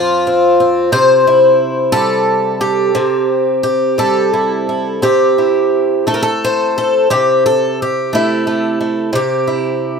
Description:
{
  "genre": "folk, solo fingerstyle acoustic guitar",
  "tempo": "59 BPM (dotted quarters)",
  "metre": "6/8",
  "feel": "rubato",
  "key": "unclear",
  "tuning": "A4 = 441 Hz",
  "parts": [
    { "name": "picked twelve-string acoustic guitar", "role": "solo", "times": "0.0-10.0 s", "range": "F2 to C5", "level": "-11 LUFS", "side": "equal", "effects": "none" }
  ],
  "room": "moderate studio reverb, RT60 0.5 s",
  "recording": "minimal, uncompressed stereo recording",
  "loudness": "-11 LUFS",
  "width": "side -5 dB against mid",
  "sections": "0.0-10.0 A section",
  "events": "none",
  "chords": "0.0 F5; 0.9 C6; 5.0 Am/C; 9.1 C"
}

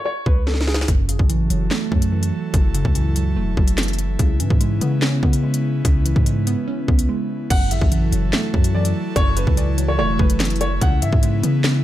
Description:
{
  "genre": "hip hop, drill",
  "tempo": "145 BPM",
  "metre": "4/4",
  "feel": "half-time",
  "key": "F# minor",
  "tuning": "A4 = 440 Hz",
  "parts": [
    { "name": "dark grand piano", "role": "melody", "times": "0.0-0.9, 7.5-11.8 s", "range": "G#4 to F#5", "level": "-26 LUFS", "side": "left 1 dB", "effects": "ping-pong delay" },
    { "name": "long sustained 808-style bass", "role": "bass", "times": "0.3-11.8 s", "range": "E1 to C#3", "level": "-21 LUFS", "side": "equal", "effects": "none" },
    { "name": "drill drum kit", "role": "drums", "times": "0.3-11.7 s", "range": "crash cymbal, handclaps, hi-hat, kick drum, snare drum", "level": "-19 LUFS", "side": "equal", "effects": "none" },
    { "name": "glassy wavetable pluck", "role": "accompaniment", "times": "0.9-11.8 s", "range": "F#2 to C#4", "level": "-24 LUFS", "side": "right 2 dB", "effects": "chorus" },
    { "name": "airy breathy pad", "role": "sustained chords", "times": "0.9-11.8 s", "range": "C#3 to A4", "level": "-29 LUFS", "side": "equal", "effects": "chorus" }
  ],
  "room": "little or no reverb",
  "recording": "none",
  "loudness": "-16 LUFS",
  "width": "side -13 dB against mid",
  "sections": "0.0-7.5 A section; 7.5-11.8 B section",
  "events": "break 0.0-0.9, 7.1-7.5; drum fill 0.5-0.9",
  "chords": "0.0 C#5; 0.9 F#m7; 4.2 C#m7; 7.5 F#m7; 10.8 C#m7"
}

